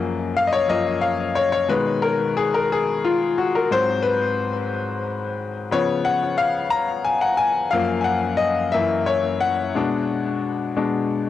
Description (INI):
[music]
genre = gospel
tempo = 60 BPM (dotted quarters)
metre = 6/8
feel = straight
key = F# major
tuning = A4 = 440 Hz
[part]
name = bright concert grand piano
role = solo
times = 0.0-11.3 s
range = F#2 to A#5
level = -19 LUFS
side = left 4 dB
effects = cassette tape, tape echo
[sound]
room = light reverb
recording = home recording on cassette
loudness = -19 LUFS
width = side -12 dB against mid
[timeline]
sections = 0.0-11.3 A section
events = grand piano solo 0.0-11.3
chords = 0.0 F#maj7; 1.7 B6; 3.7 G#7#9; 5.7 C#7; 7.7 F#maj7; 8.7 F#7; 9.7 Bm6